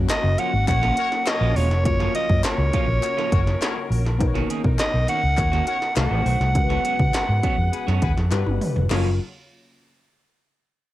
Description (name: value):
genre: polished 1980s jazz-funk pop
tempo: 102 BPM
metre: 4/4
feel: straight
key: F# major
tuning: A4 = 440 Hz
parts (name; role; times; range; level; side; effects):
- tine electric piano; accompaniment; 0.0-9.2 s; F#3 to C#5; -30 LUFS; left 9 dB; overdrive, medium tremolo, lush chorus, cassette tape
- warm studio string section; sustained chords; 0.0-9.2 s; C#3 to Gb5; -36 LUFS; right 1 dB; cassette tape
- vintage muted fingered electric bass; bass; 0.0-9.2 s; E1 to C#3; -21 LUFS; equal; none
- breathy soprano saxophone; melody; 0.1-8.3 s; C#5 to F#5; -24 LUFS; right 1 dB; cassette tape
- semi-hollow electric guitar; riff; 0.1-9.1 s; D#3 to G#4; -29 LUFS; right 8 dB; wide subtle chorus, cassette tape
- industrial drum kit; drums; 0.1-9.0 s; crash cymbal, hi-hat, kick drum, snare drum, toms; -25 LUFS; equal; cassette tape
- group handclap; percussion; 0.1-9.2 s; none; -34 LUFS; left 9 dB; none
- mellow horn section; second line; 0.7-9.1 s; A#3 to Eb5; -32 LUFS; left 10 dB; cassette tape
room: light reverb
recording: home recording on cassette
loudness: -19 LUFS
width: side -15 dB against mid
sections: 0.0-8.9 A section; 8.9-10.9 B section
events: drum fill 8.3-8.9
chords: 0.0 F#maj7; 4.2 Bmaj9; 6.0 Cdim7; 6.6 C#7sus4; 8.3 Gmaj7; 8.9 F#maj7